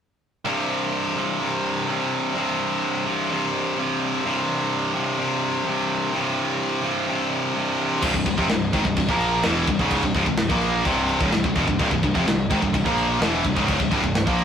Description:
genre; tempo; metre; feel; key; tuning
heavy metal; 127 BPM; 4/4; straight; C phrygian dominant; A4 = 441 Hz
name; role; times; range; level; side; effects
tight distorted guitar; riff; 0.4-14.4 s; C2 to Bb3; -25 LUFS; right 6 dB; distortion
heavy high-gain guitar; riff; 0.5-14.4 s; C2 to Bb3; -24 LUFS; left 6 dB; distortion
heavy high-gain guitar; riff; 8.0-14.4 s; C2 to Bb3; -27 LUFS; left 1 dB; distortion
fuzz picked electric bass; bass; 8.0-14.4 s; C1 to Bb1; -27 LUFS; equal; overdrive
tight metal drum kit; drums; 8.0-14.4 s; crash cymbal, kick drum, snare drum; -25 LUFS; equal; none
room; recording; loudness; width
moderate studio reverb, RT60 0.7 s; rough rehearsal-room recording, warm saturation; -20 LUFS; side -8 dB against mid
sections
0.5-8.0 A section; 8.0-14.4 B section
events
none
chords
0.5 C5; 8.0 C

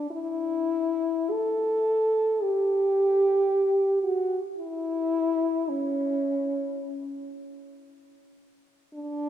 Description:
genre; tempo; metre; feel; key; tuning
classical, free, expressive piece for unaccompanied French horn; 47-57 BPM; 4/4; rubato; D major; A4 = 440 Hz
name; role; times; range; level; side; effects
mellow French horn; solo; 0.0-9.3 s; C#4 to A4; -24 LUFS; equal; none
room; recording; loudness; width
wet church reverb, RT60 3.6 s; minimal, uncompressed stereo recording; -23 LUFS; side -10 dB against mid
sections
0.0-9.3 A section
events
none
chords
none

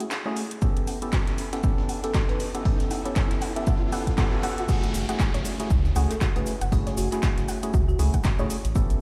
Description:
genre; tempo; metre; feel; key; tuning
deep house; 118 BPM; 4/4; swing 58% on 16ths; F# minor; A4 = 440 Hz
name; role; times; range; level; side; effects
folk marimba with medium mallets; melody; 0.0-8.6 s; F#4 to E5; -38 LUFS; equal; vintage 12-bit sampler grit, digital delay
soft round pluck; arpeggios; 0.0-8.5 s; F#4 to F#5; -40 LUFS; equal; chorus, sidechain pumping, digital delay
percussive organ stab; stabs; 0.0-9.0 s; A3 to A4; -33 LUFS; equal; chorus, cassette tape, sidechain pumping, digital delay
sub bass with octave; bass; 0.0-9.0 s; E1 to A2; -28 LUFS; equal; sidechain pumping, high-pass filter
deep house drum kit; drums; 0.0-9.0 s; crash cymbal, handclaps, hi-hat; -38 LUFS; equal; overdrive
riser and downlifter; sound effects; 0.5-8.8 s; none; -41 LUFS; equal; none
breakbeat sampler-style drum kit; drums; 0.1-8.9 s; hi-hat, shaker, snare drum; -43 LUFS; equal; high-pass filter on hats, high-pass filter on perc, high-pass filter on snare
electronic kick drum; drums; 0.6-8.9 s; none; -26 LUFS; equal; none
cabasa; percussion; 4.7-9.0 s; none; -45 LUFS; equal; none
room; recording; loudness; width
light reverb; played on a big sound system in a bare room, large studio reverb; -25 LUFS; mono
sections
0.0-4.7 A section; 4.7-9.0 B section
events
build-up 0.0-4.7; filter sweep on synth arpeggio sound 0.0-4.7; riser 0.5-4.7; drop 4.7-9.0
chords
0.0 F#m9; 0.6 A9; 4.7 F#m9

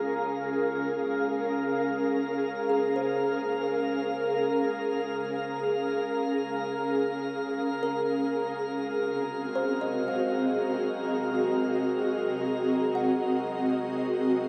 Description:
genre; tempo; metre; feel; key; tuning
ambient; free time; none; none; Bb minor; A4 = 440 Hz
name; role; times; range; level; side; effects
ethereal airy pad; sustained chords; 0.0-14.5 s; C4 to F5; -30 LUFS; equal; ensemble chorus, built-in reverb, tremolo
kalimba; arpeggios; 0.0-14.5 s; F4 to Gb5; -38 LUFS; equal; tape echo
drifting glass-harmonics texture; texture; 0.0-14.5 s; Bb4 to Bb5; -38 LUFS; equal; chorus, built-in reverb
room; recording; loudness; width
wet huge ambient reverb, RT60 8.4 s; none; -28 LUFS; mono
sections
0.0-14.5 A section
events
fade-in on kalimba 0.0-14.5; fade-out on synth texture 0.0-14.5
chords
0.0 Bbm7; 8.7 Ab7

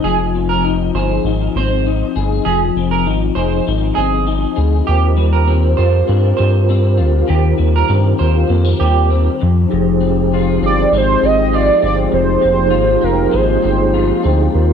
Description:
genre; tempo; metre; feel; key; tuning
indie pop; 99 BPM; 4/4; straight; unclear; A4 = 443 Hz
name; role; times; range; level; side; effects
electric guitar through a small old amp; second line; 0.0-9.1 s; G4 to C5; -21 LUFS; right 8 dB; lush chorus, tape echo
electric guitar through a small old amp; accompaniment; 0.0-14.7 s; F2 to Ab4; -19 LUFS; left 13 dB; ensemble chorus, vibrato effect
round analog bass; bass; 0.0-14.7 s; F1 to G2; -15 LUFS; equal; none
mellow tonewheel organ; accompaniment; 4.8-14.7 s; Eb4 to C5; -21 LUFS; right 11 dB; chorus vibrato, stopped rotary speaker, cassette tape
warbly tape-like pad; sustained chords; 9.7-14.7 s; F3 to F4; -22 LUFS; left 1 dB; chorus, built-in reverb
warm velvety synth lead; melody; 10.7-14.2 s; Bb4 to Eb5; -15 LUFS; right 2 dB; analog chorus, tape echo
room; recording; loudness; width
light reverb; 1960s-style stereo with parts hard left and right; -12 LUFS; side -7 dB against mid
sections
0.0-9.7 A section; 9.7-14.7 B section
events
none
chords
0.0 Fm7; 4.9 Eb69; 9.4 N.C.; 9.7 Fm7

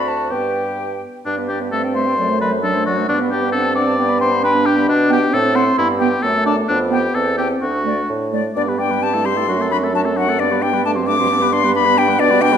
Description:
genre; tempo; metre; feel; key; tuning
quick classical-period movement for wind quintet; 132 BPM; 2/4; straight; G major; A4 = 440 Hz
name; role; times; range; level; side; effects
bright concert flute; melody; 0.0-12.6 s; B4 to D6; -21 LUFS; left 6 dB; none
warm oboe; second line; 0.0-12.6 s; D4 to D5; -20 LUFS; left 2 dB; none
dark clarinet; accompaniment; 0.0-12.6 s; F#3 to D5; -23 LUFS; right 7 dB; none
mellow French horn; accompaniment; 0.0-12.6 s; F#3 to D4; -23 LUFS; equal; none
warm bassoon; bass; 0.0-12.6 s; D2 to B2; -22 LUFS; right 2 dB; none
room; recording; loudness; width
wet recital hall reverb, RT60 1.6 s; none; -15 LUFS; side -8 dB against mid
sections
0.0-1.3 A section; 1.3-8.6 B section; 8.6-12.6 B section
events
none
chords
0.3 G; 1.7 Am7/G; 2.2 D7/F#; 3.1 G; 3.5 D7/G; 4.0 G; 4.9 G/B; 5.3 F#dim/A; 5.8 Em/G; 6.2 D/F#; 6.7 G7/F; 7.2 C/E; 7.6 D; 8.6 G; 9.0 Am7/G; 9.5 D7/F#; 10.4 G; 10.9 D7/G; 11.3 G

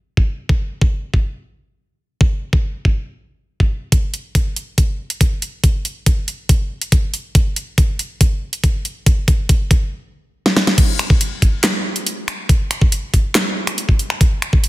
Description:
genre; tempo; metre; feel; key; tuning
dubstep; 140 BPM; 4/4; half-time; none; none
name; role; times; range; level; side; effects
electronic kick drum; drums; 0.2-14.6 s; none; -14 LUFS; equal; studio reverb
dubstep drum kit; drums; 3.9-14.7 s; crash cymbal, finger snaps, handclaps, hi-hat, snare drum; -18 LUFS; equal; low-pass filter on hats, studio reverb, soft clipping on snare, low-pass filter on snare, low-pass filter on cymbals
room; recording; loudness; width
little or no reverb; dense, heavily limited modern master; -15 LUFS; side -17 dB against mid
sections
0.0-3.9 A section; 3.9-10.8 B section; 10.8-14.7 C section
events
build-up 3.9-10.8; drum fill 7.4-9.9, 10.5-10.8; stop 9.9-10.8; drop 10.8-14.7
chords
none

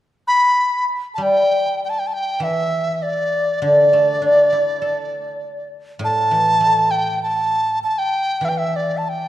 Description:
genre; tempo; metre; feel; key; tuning
chinese traditional, Chinese chamber ensemble; 99 BPM; 4/4; rubato; G gong mode; A4 = 438 Hz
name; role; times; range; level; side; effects
reedy large dizi; melody; 0.3-9.3 s; D5 to B5; -18 LUFS; equal; none
guzheng; accompaniment; 1.2-9.3 s; A2 to A4; -19 LUFS; equal; none
room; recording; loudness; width
wet scoring stage reverb, RT60 2.0 s; dark, warm production; -16 LUFS; side -13 dB against mid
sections
0.0-1.2 A section; 1.2-9.3 B section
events
none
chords
none

